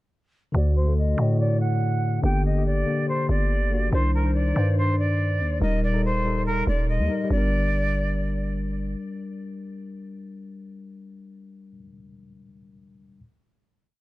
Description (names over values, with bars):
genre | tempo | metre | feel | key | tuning
hip hop, trap | 142 BPM | 4/4 | half-time | G harmonic minor | A4 = 440 Hz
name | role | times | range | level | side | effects
jazz flute | melody | 0.5-8.5 s | Bb4 to G5 | -29 LUFS | right 1 dB | low-pass filter
tine electric piano | accompaniment | 0.5-13.2 s | D3 to C5 | -28 LUFS | left 3 dB | low-pass filter
growling 808-style bass | bass | 0.5-9.0 s | Eb1 to A2 | -23 LUFS | equal | none
room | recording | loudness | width
small room ambience | dark, warm production | -21 LUFS | side -17 dB against mid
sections
0.5-7.3 breakdown; 7.3-10.7 final chord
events
filter sweep 0.5-7.3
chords
0.5 D; 2.2 Gm; 3.9 Cmadd9; 5.6 Eb; 7.3 Gm